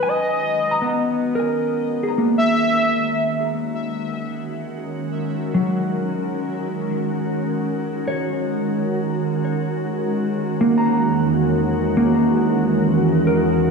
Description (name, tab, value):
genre	ambient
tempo	66 BPM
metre	4/4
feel	straight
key	unclear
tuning	A4 = 439 Hz
part	warm velvety synth lead	melody	0.0-3.7 s	D#5 to E5	-22 LUFS	left 1 dB	chorus, ping-pong delay
part	glassy FM pad	sustained chords	0.0-13.7 s	E2 to A#5	-22 LUFS	equal	ensemble chorus, built-in reverb
part	mellow electric guitar	arpeggios	0.0-13.7 s	F#3 to A#5	-22 LUFS	right 1 dB	ping-pong delay
room	wet concert hall reverb, RT60 2.0 s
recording	worn, warbling old tape, cassette tape, warbly pitch drift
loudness	-18 LUFS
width	side -4 dB against mid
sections	0.0-13.7 A section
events	fade-in on ambient pad 0.0-13.7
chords	0.0 G#m9; 3.7 F#add9; 11.0 Emaj9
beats	| 0.11 1.02 1.93 2.83 | 3.74 4.65 5.56 6.47 | 7.38 8.29 9.20 10.11 | 11.02 11.93 12.84